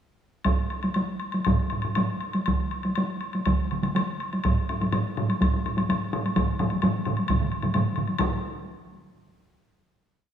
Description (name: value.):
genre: japanese traditional, taiko drum ensemble.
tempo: 118-142 BPM.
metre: 4/4.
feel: straight.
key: none.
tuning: none.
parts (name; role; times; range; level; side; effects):
solo taiko drums; percussion; 0.4-8.4 s; none; -28 LUFS; left 1 dB; none.
woodblock; percussion; 0.4-8.4 s; none; -32 LUFS; left 2 dB; none.
solo taiko drums; percussion; 0.5-8.4 s; none; -28 LUFS; right 2 dB; none.
taiko ensemble; percussion; 0.5-8.6 s; none; -29 LUFS; left 1 dB; none.
taiko ensemble; percussion; 2.5-8.6 s; none; -31 LUFS; right 3 dB; none.
room: wet recital hall reverb, RT60 1.7 s.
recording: none.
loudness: -23 LUFS.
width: side -9 dB against mid.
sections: 0.5-8.2 A section; 8.2-10.3 final hit.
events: speeding up 0.5-10.3.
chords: none.